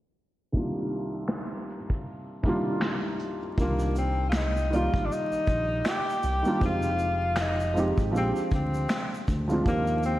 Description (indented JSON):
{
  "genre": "lo-fi hip hop",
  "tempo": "79 BPM",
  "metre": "4/4",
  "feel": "swing 56% on 16ths",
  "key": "C minor",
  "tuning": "A4 = 440 Hz",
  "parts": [
    { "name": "felt-muted upright piano", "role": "accompaniment", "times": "0.5-10.2 s", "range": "C2 to D5", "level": "-29 LUFS", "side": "right 1 dB", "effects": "none" },
    { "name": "vintage brush drum kit", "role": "drums", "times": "0.5-10.2 s", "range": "finger snaps, hi-hat, kick drum, shaker, snare drum", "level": "-30 LUFS", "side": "equal", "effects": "none" },
    { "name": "breathy tenor saxophone", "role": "melody", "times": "3.6-10.2 s", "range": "Bb3 to G4", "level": "-29 LUFS", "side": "left 1 dB", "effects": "none" },
    { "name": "smooth synth bass", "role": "bass", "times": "3.6-10.2 s", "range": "F1 to Eb2", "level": "-29 LUFS", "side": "equal", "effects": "none" }
  ],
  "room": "wet lush hall reverb, RT60 2.0 s, small room ambience",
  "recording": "dreamy mix soaked in reverb, vinyl crackle, low-pass filter",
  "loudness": "-25 LUFS",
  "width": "side -15 dB against mid",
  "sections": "0.5-3.6 A section; 3.6-10.2 B section",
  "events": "filter sweep 0.5-3.6",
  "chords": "0.5 Cm11; 6.6 Fm7; 8.1 Bb13; 9.7 Ebmaj9",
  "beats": "| 0.54 1.30 2.06 2.82 | 3.58 4.34 5.09 5.86 | 6.61 7.37 8.13 8.89 | 9.65"
}